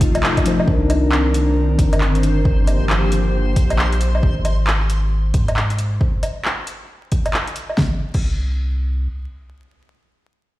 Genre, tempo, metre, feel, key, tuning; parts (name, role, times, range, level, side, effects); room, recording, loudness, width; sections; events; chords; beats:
future garage; 135 BPM; 4/4; swing 63% on 16ths; C minor; A4 = 440 Hz
felt-muted upright piano; accompaniment; 0.0-2.5 s; Eb3 to C5; -23 LUFS; left 2 dB; vintage 12-bit sampler grit, sidechain pumping, low-pass filter, dub echo
airy breathy pad; sustained chords; 0.0-4.2 s; C3 to Bb4; -22 LUFS; left 1 dB; chorus, sidechain pumping
warm sub bass; bass; 0.0-9.1 s; G1 to Ab2; -19 LUFS; equal; sidechain pumping
deep house drum kit; drums; 0.0-8.3 s; crash cymbal, handclaps, hi-hat, snare drum, woodblock; -22 LUFS; equal; overdrive
electronic kick drum; drums; 0.0-8.3 s; -19 LUFS; equal; overdrive
backwards swelling texture; texture; 1.5-4.2 s; C5; -32 LUFS; equal; built-in reverb
moderate recital hall reverb, RT60 1.4 s; played on a big sound system in a bare room, stone room reverb, vinyl crackle; -16 LUFS; side -16 dB against mid
0.7-7.8 A section; 7.8-10.6 B section
band accent 0.2
0.0 F7; 0.7 Cm9; 2.5 Gm7; 4.2 N.C.
0.23 | 0.67 1.12 1.56 2.00 | 2.45 2.89 3.34 3.78 | 4.23 4.67 5.12 5.56 | 6.00 6.45 6.89 7.34 | 7.78 8.23 8.67